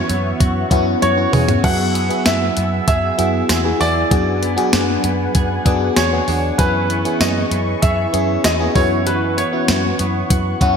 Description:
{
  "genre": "1980s-style pop",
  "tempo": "97 BPM",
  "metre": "4/4",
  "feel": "straight",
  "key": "unclear",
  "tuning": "A4 = 440 Hz",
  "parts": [
    { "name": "clear baby grand piano", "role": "melody", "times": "0.0-10.8 s", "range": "B4 to F#5", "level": "-21 LUFS", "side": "equal", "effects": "analog chorus" },
    { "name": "FM electric piano", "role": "accompaniment", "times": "0.0-10.8 s", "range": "B3 to G#4", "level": "-21 LUFS", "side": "left 2 dB", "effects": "chorus, phaser" },
    { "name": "warm analog pad", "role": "sustained chords", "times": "0.0-10.8 s", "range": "B3 to E6", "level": "-26 LUFS", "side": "left 1 dB", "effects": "chorus" },
    { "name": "direct-recorded clean electric guitar", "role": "riff", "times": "0.0-10.8 s", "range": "E3 to G#4", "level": "-26 LUFS", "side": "right 4 dB", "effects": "wide subtle chorus, digital delay" },
    { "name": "vintage muted fingered electric bass", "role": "bass", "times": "0.1-10.8 s", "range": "E2 to F#2", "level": "-22 LUFS", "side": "equal", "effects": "none" },
    { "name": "clean 12-bit digital drum machine", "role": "drums", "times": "0.1-10.8 s", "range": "crash cymbal, hi-hat, kick drum, snare drum, tambourine, toms", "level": "-18 LUFS", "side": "equal", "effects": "gated reverb" }
  ],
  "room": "moderate lush hall reverb, RT60 2.5 s",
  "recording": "bright 1980s-style digital production",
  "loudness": "-14 LUFS",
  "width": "side -6 dB against mid",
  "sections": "0.0-10.8 A section",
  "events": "drum fill 1.0-1.6",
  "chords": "0.0 C#m7/F#; 1.6 Eadd9/F#; 4.1 Bm6/F#; 6.6 C#m7/F#; 8.8 F#7sus4"
}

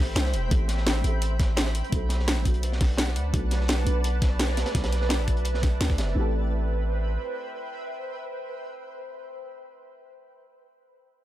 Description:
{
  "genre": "liquid drum and bass",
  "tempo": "170 BPM",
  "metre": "4/4",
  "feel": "straight",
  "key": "A dorian",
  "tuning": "A4 = 437 Hz",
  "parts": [
    { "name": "deep mellow chord stab", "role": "accompaniment", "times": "0.0-11.2 s", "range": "A3 to A4", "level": "-37 LUFS", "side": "equal", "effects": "chorus, phaser, digital delay" },
    { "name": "shimmering ambient pad", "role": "sustained chords", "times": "0.0-9.2 s", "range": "B4 to B5", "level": "-34 LUFS", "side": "right 2 dB", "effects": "chorus, built-in reverb, sidechain pumping" },
    { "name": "long sustained 808-style bass", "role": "bass", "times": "0.0-7.2 s", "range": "E1 to D2", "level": "-26 LUFS", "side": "equal", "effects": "none" },
    { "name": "crunchy breakbeat drum kit", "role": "drums", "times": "0.2-6.1 s", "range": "hi-hat, snare drum", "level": "-35 LUFS", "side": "equal", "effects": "high-pass filter on hats, high-pass filter on snare, high-pass filter on room" },
    { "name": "drum and bass drum kit", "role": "drums", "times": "0.2-6.1 s", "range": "hi-hat, snare drum", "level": "-29 LUFS", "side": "equal", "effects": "none" },
    { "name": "electronic kick drum", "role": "drums", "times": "0.5-6.0 s", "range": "none", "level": "-24 LUFS", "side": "equal", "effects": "none" }
  ],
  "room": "digital ambience",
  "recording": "dark, warm production",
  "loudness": "-23 LUFS",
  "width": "side -14 dB against mid",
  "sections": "0.0-6.2 A section; 6.2-9.0 B section",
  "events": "none",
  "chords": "0.0 Am7; 1.9 Bm7; 6.2 Am7"
}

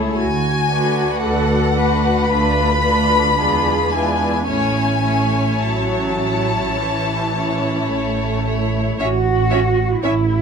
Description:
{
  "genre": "classical, slow romantic movement for string orchestra",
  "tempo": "52-60 BPM",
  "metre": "4/4",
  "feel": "rubato",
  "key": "A major",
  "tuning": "A4 = 440 Hz",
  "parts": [
    { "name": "rich chamber violin section", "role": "second line", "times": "0.0-10.1 s", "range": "E4 to C#5", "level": "-24 LUFS", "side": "left 3 dB", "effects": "none" },
    { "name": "warm studio viola section", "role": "accompaniment", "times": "0.0-10.1 s", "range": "E3 to E4", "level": "-22 LUFS", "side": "equal", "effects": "none" },
    { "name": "warm chamber cello section", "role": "bass", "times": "0.0-10.4 s", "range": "C#4 to B4", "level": "-23 LUFS", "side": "right 2 dB", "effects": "none" },
    { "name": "warm chamber double bass section", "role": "bass", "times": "0.0-10.4 s", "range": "A1 to E2", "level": "-22 LUFS", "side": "right 4 dB", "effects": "none" },
    { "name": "rich chamber violin section", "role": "melody", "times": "0.2-10.1 s", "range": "E5 to B5", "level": "-21 LUFS", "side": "left 3 dB", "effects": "none" }
  ],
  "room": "light reverb",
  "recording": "close, detailed microphones",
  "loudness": "-15 LUFS",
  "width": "side -6 dB against mid",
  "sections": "0.0-9.0 A section; 9.0-10.4 A section",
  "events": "none",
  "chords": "0.2 Bm7/D; 2.3 Bm7b5/D; 3.4 E7b9; 4.5 A"
}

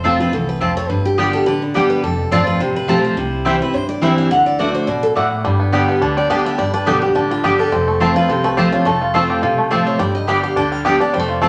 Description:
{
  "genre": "bluegrass",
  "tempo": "211 BPM",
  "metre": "4/4",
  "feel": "swing 54% on 8ths",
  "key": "G mixolydian",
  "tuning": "A4 = 438 Hz",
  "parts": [
    { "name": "picked steel-string acoustic guitar", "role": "melody", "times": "0.0-11.5 s", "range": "D4 to G5", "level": "-24 LUFS", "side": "equal", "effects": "none" },
    { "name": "picked steel-string acoustic guitar", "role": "accompaniment", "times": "0.0-11.5 s", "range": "E2 to G4", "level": "-20 LUFS", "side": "equal", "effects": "none" },
    { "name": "mandolin", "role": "stabs", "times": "0.0-11.5 s", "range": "A3 to A5", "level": "-23 LUFS", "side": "equal", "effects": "none" },
    { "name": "upright bass", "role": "bass", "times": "0.0-11.5 s", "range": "F1 to D2", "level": "-30 LUFS", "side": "equal", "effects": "none" },
    { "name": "bluegrass banjo", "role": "melody", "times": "5.4-11.5 s", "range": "G3 to G4", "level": "-22 LUFS", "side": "equal", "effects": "none" }
  ],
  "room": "wet large studio reverb, RT60 1.0 s",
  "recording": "none",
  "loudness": "-17 LUFS",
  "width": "mono",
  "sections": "0.0-11.5 A section",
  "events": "none",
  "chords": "0.0 F; 0.9 G; 2.0 F; 3.2 C; 4.3 D; 5.4 G; 7.7 F; 10.0 G"
}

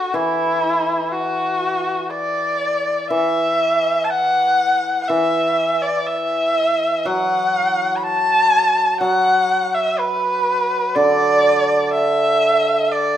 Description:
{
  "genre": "chinese traditional, Chinese chamber ensemble",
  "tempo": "61 BPM",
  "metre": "4/4",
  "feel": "straight",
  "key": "unclear",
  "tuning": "A4 = 440 Hz",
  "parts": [
    { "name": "dark erhu", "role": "melody", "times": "0.0-13.2 s", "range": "E4 to B5", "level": "-17 LUFS", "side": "equal", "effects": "none" },
    { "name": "hammered dulcimer", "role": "accompaniment", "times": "0.1-13.2 s", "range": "D3 to F#3", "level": "-22 LUFS", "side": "right 1 dB", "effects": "none" }
  ],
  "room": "moderate recital hall reverb, RT60 1.8 s",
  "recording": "minimal, uncompressed stereo recording",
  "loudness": "-16 LUFS",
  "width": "side -10 dB against mid",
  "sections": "0.0-13.2 A section",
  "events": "none",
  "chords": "none"
}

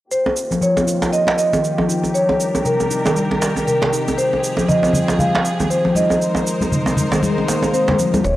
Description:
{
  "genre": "afro house",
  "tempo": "118 BPM",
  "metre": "4/4",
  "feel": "swing 58% on 16ths",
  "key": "unclear",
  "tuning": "A4 = 440 Hz",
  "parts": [
    { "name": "marimba with soft mallets", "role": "melody", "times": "0.1-8.4 s", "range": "Bb4 to F5", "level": "-19 LUFS", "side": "equal", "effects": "analog delay" },
    { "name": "warm studio string section", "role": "sustained chords", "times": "0.1-8.4 s", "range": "Eb3 to C5", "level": "-25 LUFS", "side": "equal", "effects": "sidechain pumping, low-pass filter" },
    { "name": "electronic shaker and toms", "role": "drums", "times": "0.1-8.4 s", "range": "none", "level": "-30 LUFS", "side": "right 2 dB", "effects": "high-pass filter on perc, high-pass filter on toms" },
    { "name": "djembe", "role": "percussion", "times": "0.3-8.2 s", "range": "none", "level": "-23 LUFS", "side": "right 2 dB", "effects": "none" },
    { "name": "handpan", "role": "arpeggios", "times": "0.5-8.1 s", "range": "C3 to F4", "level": "-21 LUFS", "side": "left 1 dB", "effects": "sidechain pumping, low-pass filter" },
    { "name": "congas", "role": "percussion", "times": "4.7-8.2 s", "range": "none", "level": "-21 LUFS", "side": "left 1 dB", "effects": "none" },
    { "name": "smooth gliding synth bass", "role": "bass", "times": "8.2-8.4 s", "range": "Eb1", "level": "-20 LUFS", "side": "equal", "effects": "sidechain pumping" },
    { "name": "electronic kick drum", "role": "drums", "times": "8.2-8.4 s", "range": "none", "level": "-28 LUFS", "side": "equal", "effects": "high-pass filter on kick" },
    { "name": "riser", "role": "sound effects", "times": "8.3-8.4 s", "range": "none", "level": "-43 LUFS", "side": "right 1 dB", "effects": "none" }
  ],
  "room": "moderate lush hall reverb, RT60 1.8 s, studio ambience",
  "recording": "dry, gritty hardware recording",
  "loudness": "-15 LUFS",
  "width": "side -15 dB against mid",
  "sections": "0.1-8.2 A section",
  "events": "filter sweep on string section 0.1-8.2",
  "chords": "0.1 Eb7; 2.1 Gm; 4.2 Fm9; 6.2 Ab"
}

